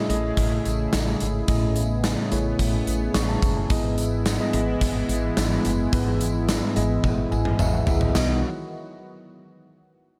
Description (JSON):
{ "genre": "1980s-style pop", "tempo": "108 BPM", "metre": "4/4", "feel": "straight", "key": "B mixolydian", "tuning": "A4 = 443 Hz", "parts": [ { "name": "mellow tine electric piano", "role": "accompaniment", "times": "0.0-8.4 s", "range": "B1 to C#6", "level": "-29 LUFS", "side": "equal", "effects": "none" }, { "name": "sweeping resonant pad", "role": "sustained chords", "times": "0.0-8.4 s", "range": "C#3 to G#4", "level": "-32 LUFS", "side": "equal", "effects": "chorus" }, { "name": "woody fretless electric bass", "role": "bass", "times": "0.1-8.4 s", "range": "F#1 to B1", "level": "-28 LUFS", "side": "equal", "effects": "subtle chorus" }, { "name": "gated 80s drum kit", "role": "drums", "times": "0.1-8.3 s", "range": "crash cymbal, hi-hat, kick drum, snare drum, tambourine, toms", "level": "-27 LUFS", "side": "equal", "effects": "none" }, { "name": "tambourine", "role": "percussion", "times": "0.7-8.4 s", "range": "none", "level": "-44 LUFS", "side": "equal", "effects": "none" } ], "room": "light reverb, small room reverb", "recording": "none", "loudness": "-23 LUFS", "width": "mono", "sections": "0.0-8.2 A section; 8.2-10.2 B section", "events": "drum fill 7.0-8.2; tine electric piano fill 7.0-8.2", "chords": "0.0 Amaj7; 3.7 Emaj7; 8.2 B" }